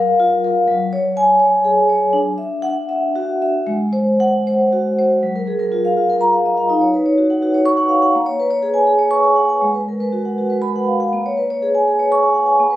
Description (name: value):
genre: classical, contemporary piece for solo vibraphone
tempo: 76-84 BPM (dotted quarters)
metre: 6/8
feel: rubato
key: F# major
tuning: A4 = 443 Hz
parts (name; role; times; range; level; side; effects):
- vibraphone with soft mallets; solo; 0.0-12.8 s; F#3 to C#6; -14 LUFS; equal; none
room: light reverb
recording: recorded on a phone in the room, club reverb, compression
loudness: -14 LUFS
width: side -14 dB against mid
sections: 0.0-5.2 A section; 5.2-12.8 B section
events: none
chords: 0.0 F#maj7; 0.7 F#sus2; 2.1 Dadd9; 3.7 G#7; 5.2 F#maj7; 6.7 D#m9; 8.1 A#m7; 9.6 G#m9; 11.1 A#m7